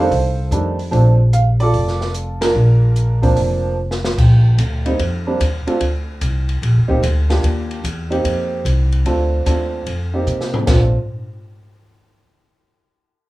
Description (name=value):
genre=jazz piano trio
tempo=148 BPM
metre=4/4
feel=swing 67% on 8ths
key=Bb major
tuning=A4 = 440 Hz
part: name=warm upright piano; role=melody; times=0.0-10.9 s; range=Eb3 to F5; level=-20 LUFS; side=right 2 dB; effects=plate reverb
part: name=upright bass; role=bass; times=0.0-10.9 s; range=Eb1 to C3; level=-16 LUFS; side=equal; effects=none
part: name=open jazz drum kit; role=drums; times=0.1-10.8 s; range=crash cymbal, hi-hat, kick drum, ride cymbal, snare drum, toms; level=-23 LUFS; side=equal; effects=none
room=light reverb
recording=rough home demo mix, small room ambience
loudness=-14 LUFS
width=side -18 dB against mid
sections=0.0-4.2 A section; 4.2-10.7 B section; 10.7-12.3 C section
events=band accent 2.3; drum fill 3.8-4.2, 10.3-10.7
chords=0.0 F13; 0.9 Bbmaj9; 4.2 Ebmaj7(no3) (rootless); 5.0 F7(no3); 5.8 Csus2; 6.6 F7sus4; 7.4 Ebmaj7; 8.2 F7sus4; 9.1 Dm7; 9.9 F7sus4; 10.7 N.C.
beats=0.11 0.52 | 0.92 1.33 1.74 2.14 | 2.55 2.96 3.36 3.77 | 4.18 4.58 4.99 5.40 | 5.80 6.21 6.61 7.02 | 7.43 7.83 8.24 8.64 | 9.05 9.46 9.86 10.27 | 10.67